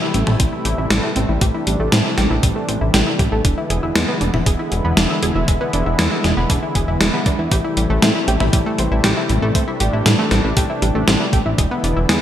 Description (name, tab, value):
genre	synthwave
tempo	118 BPM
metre	4/4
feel	straight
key	A minor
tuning	A4 = 439 Hz
part	warm analog pad	sustained chords	0.0-12.2 s	C3 to E4	-23 LUFS	left 1 dB	chorus, tremolo, sidechain pumping, shimmer reverb
part	analog pluck	arpeggios	0.0-12.1 s	G3 to G#4	-23 LUFS	right 1 dB	chorus, cassette tape, digital delay, shimmer reverb
part	chorused synth bass	bass	0.1-12.2 s	E1 to A2	-20 LUFS	equal	tube saturation, sidechain pumping
part	gated 80s digital drum machine	drums	0.1-12.2 s	hi-hat, snare drum, toms	-19 LUFS	equal	gated reverb, gated reverb snare
part	electronic kick drum	drums	0.4-11.7 s	none	-18 LUFS	equal	none
room	moderate lush hall reverb, RT60 1.9 s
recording	bright 1980s-style digital production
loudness	-15 LUFS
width	side -11 dB against mid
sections	0.0-12.2 A section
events	none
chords	0.0 Am7; 3.4 E7; 7.5 Am7; 11.6 E7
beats	0.40 0.91 | 1.41 1.92 2.43 2.94 | 3.45 3.96 4.46 4.97 | 5.48 5.99 6.50 7.01 | 7.52 8.02 8.53 9.04 | 9.55 10.06 10.57 11.07 | 11.58 12.09